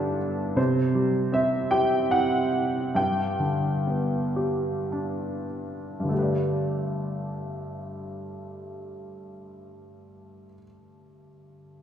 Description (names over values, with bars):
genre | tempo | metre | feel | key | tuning
classical, lyrical solo piano | 47-81 BPM | 3/4 | rubato | G major | A4 = 437 Hz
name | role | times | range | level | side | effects
clear upright piano | solo | 0.0-11.8 s | G2 to G5 | -24 LUFS | equal | none
room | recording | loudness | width
wet recital hall reverb, RT60 1.8 s | recorded in a church or concert hall | -23 LUFS | side -9 dB against mid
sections
0.0-6.1 A section; 6.1-9.9 B section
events
slowing down 0.6-6.1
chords
0.0 G; 0.6 C; 3.0 G; 6.1 Gadd9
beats
| 0.58 1.33 2.12 | 2.95 3.87 4.92 | 6.12 7.36 8.61